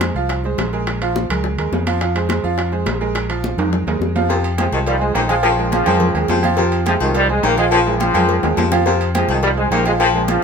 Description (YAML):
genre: latin, salsa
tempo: 210 BPM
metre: 4/4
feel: straight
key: F minor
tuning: A4 = 441 Hz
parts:
  - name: bright concert grand piano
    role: accompaniment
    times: 0.0-10.4 s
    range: F3 to F5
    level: -21 LUFS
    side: right 5 dB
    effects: none
  - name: fingered electric bass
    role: bass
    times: 0.0-10.4 s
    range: Bb1 to F2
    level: -21 LUFS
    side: left 1 dB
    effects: none
  - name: bongos and cowbell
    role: percussion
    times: 0.0-10.4 s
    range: none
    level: -27 LUFS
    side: left 7 dB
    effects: none
  - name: congas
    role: percussion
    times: 0.0-10.4 s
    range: none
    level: -26 LUFS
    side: left 1 dB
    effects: none
  - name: timbales and agogo bells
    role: percussion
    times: 0.0-10.4 s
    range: none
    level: -23 LUFS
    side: right 3 dB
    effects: none
  - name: warm baritone saxophone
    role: second line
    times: 4.3-10.2 s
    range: C3 to F3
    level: -21 LUFS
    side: left 6 dB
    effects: none
  - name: bright trombone section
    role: melody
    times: 4.6-10.4 s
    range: C3 to Bb3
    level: -19 LUFS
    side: left 1 dB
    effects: none
room: moderate studio reverb, RT60 0.6 s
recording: minimal, uncompressed stereo recording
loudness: -15 LUFS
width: side -6 dB against mid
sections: 0.0-4.3 A section; 4.3-10.4 B section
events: drum fill 3.6-4.3, 8.4-8.9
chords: 0.0 Fm; 0.9 Bbm7; 2.0 Fm; 3.2 Bb5; 4.3 Fm7; 5.4 Bbm7; 6.6 Fm7; 7.7 Bbm7; 8.9 Fm7